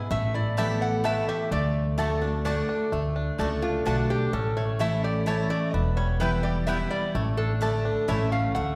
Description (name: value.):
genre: bluegrass.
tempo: 128 BPM.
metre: 3/4.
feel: straight.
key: D major.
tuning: A4 = 440 Hz.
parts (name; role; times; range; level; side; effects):
picked steel-string acoustic guitar; accompaniment; 0.0-8.8 s; E2 to F#4; -31 LUFS; equal; none.
bluegrass banjo; arpeggios; 0.0-8.8 s; G3 to G4; -36 LUFS; equal; none.
lap resonator guitar; melody; 0.1-8.8 s; F4 to F#5; -33 LUFS; equal; none.
upright bass; bass; 0.1-8.8 s; E1 to D2; -31 LUFS; equal; none.
mandolin; stabs; 0.6-8.2 s; A3 to A5; -36 LUFS; equal; none.
room: wet scoring stage reverb, RT60 1.4 s.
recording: recorded in a church or concert hall.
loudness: -26 LUFS.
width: mono.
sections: 0.0-2.9 A section; 2.9-8.8 B section.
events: resonator guitar played with a steel bar solo 2.9-8.8.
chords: 0.1 Asus2; 1.5 D; 4.3 A; 5.7 Em; 7.1 Asus4; 8.1 A.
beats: | 0.11 0.57 1.04 | 1.51 1.98 2.45 | 2.92 3.39 3.86 | 4.33 4.80 5.27 | 5.74 6.21 6.68 | 7.15 7.62 8.09 | 8.56.